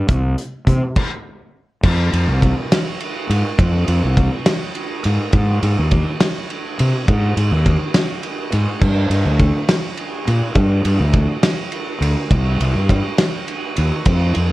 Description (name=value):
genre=indie rock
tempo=69 BPM (dotted quarters)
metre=6/8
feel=straight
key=F dorian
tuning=A4 = 438 Hz
part: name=fuzz fingered electric bass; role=bass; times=0.1-14.5 s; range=C2 to C3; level=-16 LUFS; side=equal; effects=overdrive
part: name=loose indie drum kit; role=drums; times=0.1-14.5 s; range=crash cymbal, hi-hat, kick drum, ride cymbal, snare drum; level=-18 LUFS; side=equal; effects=none
room=light reverb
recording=worn, warbling old tape, cassette tape, warbly pitch drift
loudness=-15 LUFS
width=side -18 dB against mid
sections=0.0-1.8 A section; 1.8-14.5 B section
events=stop 1.0-1.8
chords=none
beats=| 0.10 0.97 | 1.84 2.71 | 3.59 4.46 | 5.33 6.20 | 7.08 7.95 | 8.82 9.69 | 10.57 11.44 | 12.32 13.19 | 14.07